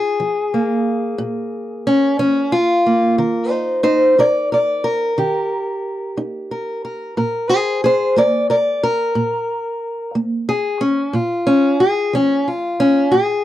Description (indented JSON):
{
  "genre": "acoustic country blues, solo or duo",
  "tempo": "60 BPM (dotted quarters)",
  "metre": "12/8",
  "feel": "straight",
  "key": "unclear",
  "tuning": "A4 = 438 Hz",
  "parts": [
    { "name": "fingerpicked steel-string acoustic guitar", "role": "solo", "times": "0.0-13.4 s", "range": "Bb2 to D5", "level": "-15 LUFS", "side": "equal", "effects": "none" }
  ],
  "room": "light reverb",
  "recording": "dry, close 1970s-style studio recording",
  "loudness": "-15 LUFS",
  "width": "side -13 dB against mid",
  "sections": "0.0-13.4 A section",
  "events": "steel-string acoustic guitar solo 0.0-13.4",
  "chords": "0.0 Bb5; 3.2 Eb; 7.2 Bb5"
}